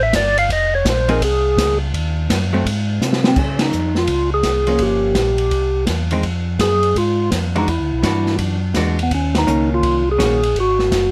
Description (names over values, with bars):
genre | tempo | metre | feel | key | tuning
soul jazz organ trio | 167 BPM | 4/4 | swing 65% on 8ths | Db major | A4 = 440 Hz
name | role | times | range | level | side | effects
percussive tonewheel organ | melody | 0.0-11.1 s | B3 to F5 | -20 LUFS | equal | slow rotary speaker
mellow tonewheel organ | bass | 0.0-11.1 s | F1 to Db3 | -23 LUFS | equal | chorus vibrato, slow rotary speaker
open jazz drum kit | drums | 0.1-11.0 s | crash cymbal, hi-hat, kick drum, ride cymbal, snare drum | -24 LUFS | equal | none
vintage hollow-body jazz guitar | accompaniment | 1.1-10.4 s | Eb3 to Ab4 | -23 LUFS | equal | none
room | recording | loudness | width
light reverb | close, detailed microphones | -17 LUFS | mono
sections
0.0-3.4 A section; 3.4-11.1 B section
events
tonewheel organ solo 0.0-3.4; drum fill 3.0-3.4; band accent 3.6, 9.3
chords
0.0 C (rootless); 0.5 Fm; 1.9 Ebm; 2.7 Ab; 3.4 Dbmaj9; 4.8 Gm7b5; 5.5 C; 6.2 Fm; 7.7 E9; 9.1 Ebm7; 10.5 Ab7(no3)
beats
0.14 | 0.50 0.86 1.22 1.58 | 1.94 2.30 2.65 3.01 | 3.37 3.73 4.09 4.45 | 4.81 5.17 5.53 5.88 | 6.24 6.60 6.96 7.32 | 7.68 8.04 8.40 8.76 | 9.11 9.47 9.83 10.19 | 10.55 10.91